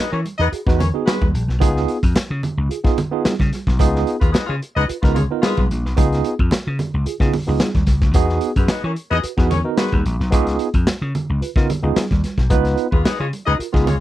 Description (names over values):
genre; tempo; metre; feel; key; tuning
funk; 110 BPM; 4/4; straight; unclear; A4 = 439 Hz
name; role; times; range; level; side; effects
dark horn section; second line; 0.0-14.0 s; G#3 to D#5; -23 LUFS; left 4 dB; none
barky tine electric piano; stabs; 0.1-13.9 s; B3 to B4; -22 LUFS; right 5 dB; medium stereo tremolo
vintage slap bass; bass; 0.1-14.0 s; A#1 to E3; -20 LUFS; equal; none
crunchy breakbeat drum kit; drums; 0.3-14.0 s; hi-hat, kick drum, snare drum; -18 LUFS; equal; none
congas; percussion; 0.3-14.0 s; none; -26 LUFS; right 3 dB; none
room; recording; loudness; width
little or no reverb; dry, close 1970s-style studio recording; -16 LUFS; side -14 dB against mid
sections
0.0-14.0 A section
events
none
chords
0.0 Emaj9; 1.6 C#9; 8.2 Emaj9; 10.3 C#9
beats
0.52 1.07 | 1.61 2.16 2.70 3.25 | 3.79 4.34 4.88 5.43 | 5.97 6.52 7.06 7.61 | 8.15 8.70 9.24 9.78 | 10.33 10.87 11.42 11.96 | 12.51 13.05 13.60